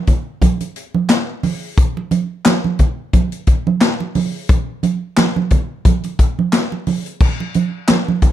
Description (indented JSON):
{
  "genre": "funk",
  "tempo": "88 BPM",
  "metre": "4/4",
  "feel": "swing 56% on 16ths",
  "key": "none",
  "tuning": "none",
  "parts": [
    { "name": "swinging big-band drum kit", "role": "drums", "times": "0.1-8.3 s", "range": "crash cymbal, handclaps, hi-hat, kick drum, snare drum", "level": "-15 LUFS", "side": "left 1 dB", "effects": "none" },
    { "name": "congas", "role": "percussion", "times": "0.1-8.3 s", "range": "none", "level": "-19 LUFS", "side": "right 6 dB", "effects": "none" }
  ],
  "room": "light reverb",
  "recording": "none",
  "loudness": "-15 LUFS",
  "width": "side -12 dB against mid",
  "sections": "0.0-7.2 A section; 7.2-8.3 B section",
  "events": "none",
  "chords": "none"
}